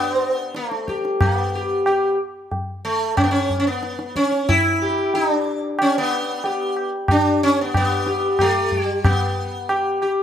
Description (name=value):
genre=indian classical, Hindustani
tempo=92 BPM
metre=3/4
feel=straight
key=unclear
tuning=A4 = 440 Hz
part: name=sitar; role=melody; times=0.0-10.2 s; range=A3 to G4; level=-19 LUFS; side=equal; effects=none
part: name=tabla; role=percussion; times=0.5-10.2 s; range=none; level=-22 LUFS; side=equal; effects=none
room=light reverb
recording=close, detailed microphones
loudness=-18 LUFS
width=side -9 dB against mid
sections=0.0-9.0 A section; 9.0-10.2 B section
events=none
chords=none